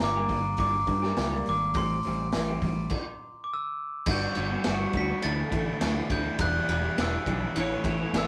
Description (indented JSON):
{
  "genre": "indie rock",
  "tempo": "103 BPM",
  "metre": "4/4",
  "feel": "straight",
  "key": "unclear",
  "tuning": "A4 = 440 Hz",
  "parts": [
    { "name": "glockenspiel with hard plastic mallets", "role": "melody", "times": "0.0-8.3 s", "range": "C6 to B6", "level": "-34 LUFS", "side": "equal", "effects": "none" },
    { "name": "electric guitar at the edge of break-up", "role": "riff", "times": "0.0-8.3 s", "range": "E2 to F#4", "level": "-36 LUFS", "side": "equal", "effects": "none" },
    { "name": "picked electric bass", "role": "bass", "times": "0.0-8.3 s", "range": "E1 to G2", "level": "-34 LUFS", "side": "equal", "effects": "none" },
    { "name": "raw garage drum kit", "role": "drums", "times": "0.0-8.3 s", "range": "crash cymbal, hi-hat, kick drum, ride cymbal, snare drum", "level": "-34 LUFS", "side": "equal", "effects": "none" },
    { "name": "electric guitar through a small old amp", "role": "riff", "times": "0.2-8.3 s", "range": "D3 to D5", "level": "-36 LUFS", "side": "equal", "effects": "phaser" }
  ],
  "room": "moderate studio reverb, RT60 0.5 s",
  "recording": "rough rehearsal-room recording, tube saturation",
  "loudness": "-28 LUFS",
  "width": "mono",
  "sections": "0.0-4.1 A section; 4.1-8.3 B section",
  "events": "stop 2.9-4.1",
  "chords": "0.0 Gm; 1.8 Am7; 4.1 Gmaj7; 5.2 Dsus2; 6.4 Em7; 7.6 Aadd9"
}